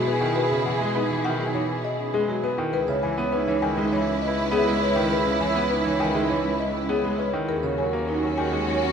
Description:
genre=classical, minimalist pattern music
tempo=101 BPM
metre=4/4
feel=straight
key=unclear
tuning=A4 = 441 Hz
part: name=mellow soprano saxophone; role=second line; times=0.0-8.9 s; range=E4 to G#4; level=-32 LUFS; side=right 2 dB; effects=none
part: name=clear grand piano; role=accompaniment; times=0.0-8.9 s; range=C#3 to C#4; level=-28 LUFS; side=left 1 dB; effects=none
part: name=rich studio string section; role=sustained chords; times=0.0-8.9 s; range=C#4 to B4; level=-29 LUFS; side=right 1 dB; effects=none
part: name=vibraphone with soft mallets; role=arpeggios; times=0.0-8.9 s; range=C#4 to C#5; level=-28 LUFS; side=right 5 dB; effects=none
part: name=rich cello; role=bass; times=0.0-8.9 s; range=C#2 to B2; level=-30 LUFS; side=equal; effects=none
part: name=buzzing marimba with medium mallets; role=melody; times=0.1-8.9 s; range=G#4 to G#5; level=-29 LUFS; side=left 6 dB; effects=none
room=wet cathedral reverb, RT60 5.8 s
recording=in a vast, echoing space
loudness=-21 LUFS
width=side -7 dB against mid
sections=0.0-8.9 A section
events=none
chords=0.0 E69/B; 2.7 C#m7; 7.5 D#m7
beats=| 0.36 0.95 1.55 2.14 | 2.74 3.33 3.93 4.52 | 5.11 5.71 6.30 6.90 | 7.49 8.08 8.68

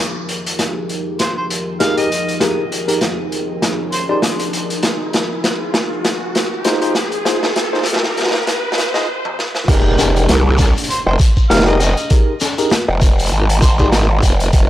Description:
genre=glitch hop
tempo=99 BPM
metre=4/4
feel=swing 56% on 16ths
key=F minor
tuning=A4 = 440 Hz
part: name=dark analog pad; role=sustained chords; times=0.0-9.1 s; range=F3 to Bb4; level=-25 LUFS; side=equal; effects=chorus, sidechain pumping
part: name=riser and impact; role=sound effects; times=0.0-12.1 s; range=none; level=-25 LUFS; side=equal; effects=none
part: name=raw garage drum kit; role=drums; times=0.3-14.7 s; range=crash cymbal, hi-hat, snare drum, toms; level=-18 LUFS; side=equal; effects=none
part: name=mellow harmonica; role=melody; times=1.2-4.2, 10.9-13.9 s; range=C5 to F5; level=-24 LUFS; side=equal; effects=vintage 12-bit sampler grit, tape echo
part: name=tine electric piano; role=stabs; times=1.8-13.9 s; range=Eb4 to Eb5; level=-21 LUFS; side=left 1 dB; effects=medium stereo tremolo, sidechain pumping, low-pass filter, tape echo
part: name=growl bass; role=bass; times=9.7-14.7 s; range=F1 to C2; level=-14 LUFS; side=equal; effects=chorus, tube saturation
part: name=electronic kick drum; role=drums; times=9.7-14.7 s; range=none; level=-12 LUFS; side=equal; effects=overdrive
part: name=shekere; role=percussion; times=9.7-14.7 s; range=none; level=-27 LUFS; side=left 4 dB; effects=none
room=light reverb, studio ambience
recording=transformer saturation, high-pass filter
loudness=-14 LUFS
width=side -13 dB against mid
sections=0.0-9.7 A section; 9.7-14.7 B section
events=build-up 0.0-9.7; drum fill 0.0-9.1, 9.2-9.7; riser 0.0-9.1; filter sweep on tine electric piano 0.0-9.7; stop 9.1-9.7; drop 9.7-14.7; impact 9.7-12.1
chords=0.0 Fm11; 4.8 Bb7sus4/F; 9.7 Fm11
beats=0.59 1.20 1.81 | 2.41 3.02 3.62 4.23 | 4.84 5.44 6.05 6.66 | 7.26 7.87 8.47 9.08 | 9.69 10.29 10.90 11.50 | 12.11 12.71 13.32 13.93 | 14.53

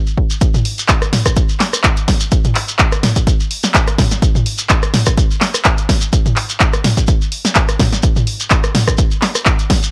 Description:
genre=house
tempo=126 BPM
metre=4/4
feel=swing 54% on 16ths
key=none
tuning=none
part: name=shekere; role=percussion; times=0.1-9.9 s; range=none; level=-25 LUFS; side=equal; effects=none
part: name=electronic kick drum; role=drums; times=0.2-9.8 s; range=none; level=-16 LUFS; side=equal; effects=none
part: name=punchy analog drum machine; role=drums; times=0.4-9.9 s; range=handclaps, hi-hat, rim click, snare drum, toms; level=-17 LUFS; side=equal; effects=none
room=little or no reverb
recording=dry, gritty hardware recording, cassette tape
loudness=-14 LUFS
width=mono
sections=0.4-9.9 A section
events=drop 0.4-9.9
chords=none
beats=| 0.41 0.89 1.37 1.84 | 2.32 2.79 3.27 3.75 | 4.22 4.70 5.18 5.65 | 6.13 6.60 7.08 7.56 | 8.03 8.51 8.98 9.46

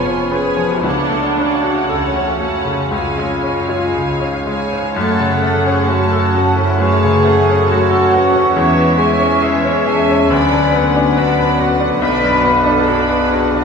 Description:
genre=classical, romantic movement for piano and orchestra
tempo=57-71 BPM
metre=4/4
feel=rubato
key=F# minor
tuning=A4 = 442 Hz
part: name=bright grand piano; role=melody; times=0.0-13.6 s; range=B1 to B4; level=-17 LUFS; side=left 2 dB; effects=none
part: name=warm studio violin section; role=melody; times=0.0-13.6 s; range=E5 to B5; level=-26 LUFS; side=equal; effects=none
part: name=dark studio violin section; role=second line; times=0.0-13.6 s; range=A4 to F#5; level=-23 LUFS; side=equal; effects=none
part: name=warm studio viola section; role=accompaniment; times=0.0-13.6 s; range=E3 to G#4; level=-22 LUFS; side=right 1 dB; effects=none
part: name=mellow French horn section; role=sustained chords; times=0.0-13.6 s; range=F#3 to F#4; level=-23 LUFS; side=left 4 dB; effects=none
part: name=rich studio double bass section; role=bass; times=0.0-13.6 s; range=E#1 to F#2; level=-23 LUFS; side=right 3 dB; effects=none
part: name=warm studio cello section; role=bass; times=0.0-13.6 s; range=C#2 to B4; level=-20 LUFS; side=equal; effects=none
part: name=warm clarinet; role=second line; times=4.9-13.6 s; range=A4 to D5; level=-26 LUFS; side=left 3 dB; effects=none
part: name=dark cor anglais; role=second line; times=5.0-13.6 s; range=C#5 to F#5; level=-22 LUFS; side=right 4 dB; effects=none
part: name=mellow wooden flute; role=second line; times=5.0-13.6 s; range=E5 to B5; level=-22 LUFS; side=left 1 dB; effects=none
room=wet recital hall reverb, RT60 1.7 s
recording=recorded in a church or concert hall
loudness=-12 LUFS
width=side -6 dB against mid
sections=0.0-5.0 A section; 5.0-13.6 B section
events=none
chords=0.0 C#7/E#; 0.8 F#m/C#; 2.9 C#; 5.0 F#m; 8.6 C#m/E; 10.3 Bm/D; 12.0 Bm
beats=| 0.85 1.90 2.92 3.94 | 4.95 5.87 6.80 7.70 | 8.55 9.43 10.30 11.18 | 12.03 12.88

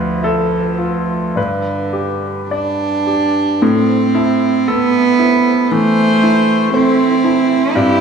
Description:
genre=neoclassical piano and strings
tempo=52-60 BPM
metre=4/4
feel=rubato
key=A minor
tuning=A4 = 440 Hz
part: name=clear cello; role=second line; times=0.0-8.0 s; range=D3 to E4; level=-14 LUFS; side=right 3 dB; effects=none
part: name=clear concert grand piano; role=accompaniment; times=0.0-8.0 s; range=D2 to E5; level=-17 LUFS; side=left 2 dB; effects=none
part: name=marimba with soft mallets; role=arpeggios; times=3.6-7.9 s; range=C4 to A5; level=-22 LUFS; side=right 3 dB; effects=analog delay
part: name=warm viola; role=accompaniment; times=5.7-8.0 s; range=E4 to C5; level=-20 LUFS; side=equal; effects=none
room=wet plate reverb, RT60 2.6 s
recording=dreamy mix soaked in reverb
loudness=-12 LUFS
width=side -6 dB against mid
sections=0.0-3.6 A section; 3.6-8.0 A section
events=none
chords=0.0 Dmadd9; 1.4 G; 3.6 Am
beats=0.23 1.37 2.51 | 3.62 4.67 5.70 6.72 | 7.74

